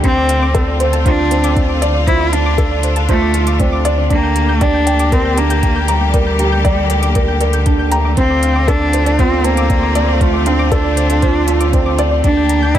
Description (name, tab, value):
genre	piano and strings electronica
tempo	118 BPM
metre	4/4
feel	straight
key	D minor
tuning	A4 = 440 Hz
part	warm cello	melody	0.0-12.8 s	G3 to E4	-18 LUFS	left 1 dB	ping-pong delay
part	bright studio string section	sustained chords	0.0-12.8 s	D3 to G4	-22 LUFS	left 2 dB	sidechain pumping
part	soft round pluck	arpeggios	0.0-12.8 s	C5 to G6	-24 LUFS	right 2 dB	chorus, sidechain pumping, ping-pong delay
part	felt-muted upright piano	riff	0.0-12.8 s	C4 to Bb5	-18 LUFS	right 2 dB	ping-pong delay
part	warm sub bass	bass	0.0-12.8 s	D2	-17 LUFS	equal	sidechain pumping
part	electronic hi-hat	drums	0.0-12.8 s	none	-26 LUFS	right 1 dB	none
part	electronic kick drum	drums	0.0-12.8 s	none	-16 LUFS	equal	none
room	small room ambience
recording	none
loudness	-11 LUFS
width	side -11 dB against mid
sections	0.0-12.8 A section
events	none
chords	0.0 Dm7; 4.1 Gm/D; 8.2 Dm7; 12.2 Gm/D